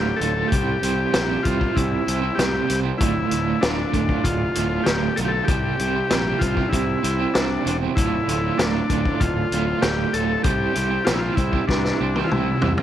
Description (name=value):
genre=psychedelic rock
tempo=97 BPM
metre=4/4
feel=straight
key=unclear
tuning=A4 = 441 Hz
part: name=combo organ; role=melody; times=0.0-12.7 s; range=D4 to A4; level=-24 LUFS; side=left 3 dB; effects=tape echo
part: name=pedal harmonium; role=sustained chords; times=0.0-12.8 s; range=G4 to A5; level=-35 LUFS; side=right 10 dB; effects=none
part: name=electric guitar at the edge of break-up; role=riff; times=0.0-12.8 s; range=D2 to C5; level=-26 LUFS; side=right 10 dB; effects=tremolo
part: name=fuzz fingered electric bass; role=bass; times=0.0-12.8 s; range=D1 to C2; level=-26 LUFS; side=left 1 dB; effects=overdrive
part: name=vintage drum kit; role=drums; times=0.2-12.8 s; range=hi-hat, kick drum, snare drum, toms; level=-24 LUFS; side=left 1 dB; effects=none
room=light reverb, small room ambience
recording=1960s-style stereo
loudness=-19 LUFS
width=side -11 dB against mid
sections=0.0-12.8 A section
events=drum fill 11.7-12.8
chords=0.0 Dm; 0.5 C; 3.0 Dm; 5.5 C; 8.0 Dm; 10.4 C